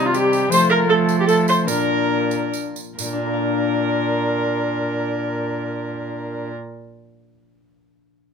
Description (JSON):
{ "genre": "classical, renaissance-style consort dance", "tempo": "130-162 BPM", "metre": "3/4", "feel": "straight", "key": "Bb major", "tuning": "A4 = 440 Hz", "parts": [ { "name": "mellow cornet", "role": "melody", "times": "0.0-6.5 s", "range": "F4 to C5", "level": "-28 LUFS", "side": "left 6 dB", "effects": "none" }, { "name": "warm viola", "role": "second line", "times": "0.0-6.5 s", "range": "F4 to C5", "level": "-22 LUFS", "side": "right 3 dB", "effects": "none" }, { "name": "concert harp", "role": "accompaniment", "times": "0.0-7.0 s", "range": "Bb2 to F5", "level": "-27 LUFS", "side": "left 10 dB", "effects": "none" }, { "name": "warm trombone", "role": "accompaniment", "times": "0.0-6.5 s", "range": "G3 to D4", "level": "-25 LUFS", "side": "left 1 dB", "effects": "none" }, { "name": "warm cello", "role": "bass", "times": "0.0-6.5 s", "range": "Bb2 to F3", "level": "-24 LUFS", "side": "right 2 dB", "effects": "none" }, { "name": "tambourine", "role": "percussion", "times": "0.1-3.2 s", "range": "none", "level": "-30 LUFS", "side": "right 8 dB", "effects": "none" } ], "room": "light reverb", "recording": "minimal, uncompressed stereo recording", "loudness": "-18 LUFS", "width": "side -6 dB against mid", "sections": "0.0-3.0 A section; 3.0-5.8 B section", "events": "slowing down 0.0-3.0", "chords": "0.0 Cm; 0.5 F; 1.7 Bb", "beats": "0.14 | 0.51 0.89 1.28 | 1.68 2.10 2.53 | 2.98 3.45 3.91 | 4.37 4.83 5.30" }